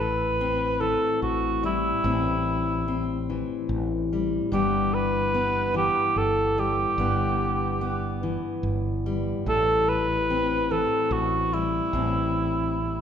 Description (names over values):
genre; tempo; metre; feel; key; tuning
acoustic folk-pop ballad; 73 BPM; 3/4; straight; unclear; A4 = 440 Hz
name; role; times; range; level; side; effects
mellow cor anglais; melody; 0.0-13.0 s; E4 to B4; -24 LUFS; right 1 dB; none
fingerpicked steel-string acoustic guitar; accompaniment; 0.0-13.0 s; G2 to C4; -28 LUFS; left 4 dB; none
mellow fretless electric bass; bass; 0.0-13.0 s; G1 to A1; -30 LUFS; right 1 dB; none
room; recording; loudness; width
wet recital hall reverb, RT60 1.4 s; recorded in a church or concert hall; -22 LUFS; side -8 dB against mid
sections
0.0-13.0 A section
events
none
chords
0.0 Am7; 4.5 Em/G; 9.5 Am7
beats
0.40 1.22 | 2.05 2.87 3.69 | 4.52 5.34 6.16 | 6.99 7.81 8.63 | 9.46 10.29 11.11 | 11.93 12.76